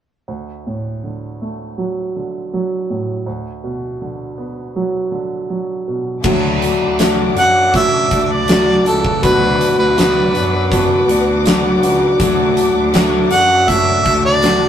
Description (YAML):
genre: pop ballad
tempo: 81 BPM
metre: 4/4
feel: straight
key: D major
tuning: A4 = 441 Hz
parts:
  - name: warm grand piano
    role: accompaniment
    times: 0.3-14.7 s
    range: D2 to F#4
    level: -20 LUFS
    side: right 3 dB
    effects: none
  - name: dark studio string section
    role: sustained chords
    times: 6.2-14.7 s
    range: A4 to D6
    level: -24 LUFS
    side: left 2 dB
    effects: none
  - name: picked steel-string acoustic guitar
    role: arpeggios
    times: 6.2-14.7 s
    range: D3 to F#4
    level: -17 LUFS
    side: left 3 dB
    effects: ping-pong delay
  - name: rich studio cello section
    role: bass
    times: 6.2-14.7 s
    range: C#2 to F#2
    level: -21 LUFS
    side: equal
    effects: none
  - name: huge arena drum kit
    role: drums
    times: 6.2-14.6 s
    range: crash cymbal, hi-hat, kick drum, snare drum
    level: -19 LUFS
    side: equal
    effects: none
  - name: warm harmonica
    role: melody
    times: 7.4-14.7 s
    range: A4 to F#5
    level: -15 LUFS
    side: right 1 dB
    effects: none
room: wet small room reverb, RT60 0.6 s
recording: rough rehearsal-room recording, tube saturation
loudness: -13 LUFS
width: side -9 dB against mid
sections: 0.3-6.2 A section; 6.2-14.7 B section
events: none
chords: 0.3 D; 3.3 Bm/D; 6.2 D; 9.2 Bm/D; 12.2 D